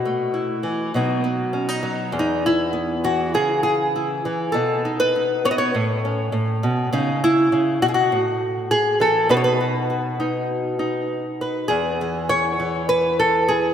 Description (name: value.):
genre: folk, solo fingerstyle acoustic guitar.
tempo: 100 BPM.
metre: 4/4.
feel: straight.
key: unclear.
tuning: A4 = 444 Hz.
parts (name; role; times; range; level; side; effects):
nylon-string guitar; solo; 0.0-13.7 s; E2 to D#5; -18 LUFS; equal; wide subtle chorus, diffuse ambient delay.
room: wet lush hall reverb, RT60 2.3 s.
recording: dreamy mix soaked in reverb.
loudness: -18 LUFS.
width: side -9 dB against mid.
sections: 0.0-11.7 A section; 11.7-13.7 B section.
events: none.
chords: 0.0 B7sus4; 0.9 B; 2.1 E5; 3.3 C#m; 4.5 B; 5.7 Aadd9; 6.9 C#m; 8.1 A5; 9.3 B; 11.7 N.C..